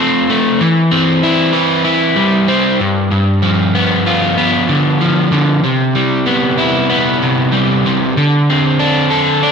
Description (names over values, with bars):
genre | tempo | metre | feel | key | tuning
rock | 95 BPM | 4/4 | straight | unclear | A4 = 438 Hz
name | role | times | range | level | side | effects
crunchy overdriven guitar | solo | 0.0-9.5 s | G2 to B4 | -11 LUFS | equal | none
room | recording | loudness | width
wet lush hall reverb, RT60 2.2 s | rough home demo mix | -11 LUFS | side -6 dB against mid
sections
0.0-9.5 A section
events
none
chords
0.0 Dm7 (rootless); 0.6 Cmaj7/E; 2.8 G7; 5.6 Cmaj7; 8.2 D7(no3)